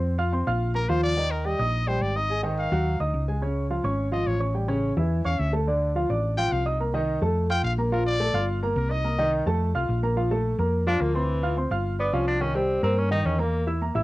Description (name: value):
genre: jazz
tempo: 214 BPM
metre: 4/4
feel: straight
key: unclear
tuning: A4 = 440 Hz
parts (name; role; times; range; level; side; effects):
- warm concert grand piano; accompaniment; 0.0-14.0 s; Db3 to F6; -26 LUFS; equal; cassette tape, plate reverb
- hollow-body short-scale fingered electric bass; bass; 0.0-14.0 s; G1 to G2; -26 LUFS; equal; none
- bright trumpet; second line; 0.7-9.3 s; Bb4 to G5; -29 LUFS; left 2 dB; cassette tape
- breathy tenor saxophone; melody; 10.9-13.7 s; E3 to Eb4; -28 LUFS; left 1 dB; none
room: light reverb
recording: home recording on cassette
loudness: -22 LUFS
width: side -18 dB against mid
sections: 0.0-1.2 A section; 1.2-10.2 A section; 10.2-14.0 A section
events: trumpet solo 0.0-10.2; tenor saxophone solo 10.2-14.0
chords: 0.0 F5; 0.6 Bb5; 1.2 Eb; 2.3 Ab5; 3.4 Db; 4.5 A7; 5.7 Dm7; 6.8 Cm7; 7.4 F; 7.9 Bbmaj7; 8.5 Gm7; 9.0 Cm7; 9.6 F; 10.2 Bbmaj7; 11.3 Dm11; 12.4 Cm7; 13.5 A5